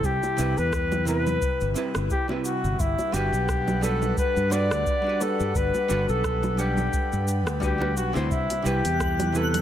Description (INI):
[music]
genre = sunset chillout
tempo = 87 BPM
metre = 4/4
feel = swing 55% on 16ths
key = C lydian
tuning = A4 = 440 Hz
[part]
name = mellow flugelhorn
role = melody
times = 0.0-9.6 s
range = E4 to D5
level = -27 LUFS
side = left 2 dB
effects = tape echo
[part]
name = archtop guitar, miked and amplified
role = accompaniment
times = 0.0-9.6 s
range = C3 to F#5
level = -32 LUFS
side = moving between left 2 dB and right 4 dB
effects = auto-pan, ping-pong delay
[part]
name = airy breathy pad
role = sustained chords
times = 0.0-9.6 s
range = C3 to F#5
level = -32 LUFS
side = equal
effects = chorus
[part]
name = fingered electric bass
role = bass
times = 0.0-9.6 s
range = G1 to G2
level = -26 LUFS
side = equal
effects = none
[part]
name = deep house drum kit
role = drums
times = 0.0-9.6 s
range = cabasa, congas, hi-hat, rim click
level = -33 LUFS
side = right 3 dB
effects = none
[part]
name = electronic kick drum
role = drums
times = 0.0-9.2 s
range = none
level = -30 LUFS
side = equal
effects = none
[part]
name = bongos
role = percussion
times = 0.2-9.3 s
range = none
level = -36 LUFS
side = right 1 dB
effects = none
[part]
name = twinkling granular texture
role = texture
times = 8.9-9.6 s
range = F#6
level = -34 LUFS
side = left 2 dB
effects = built-in reverb
[sound]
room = light reverb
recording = none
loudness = -22 LUFS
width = side -10 dB against mid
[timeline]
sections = 0.0-9.6 A section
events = none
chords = 0.0 Cmaj7; 2.8 Gmaj7; 8.3 Cmaj7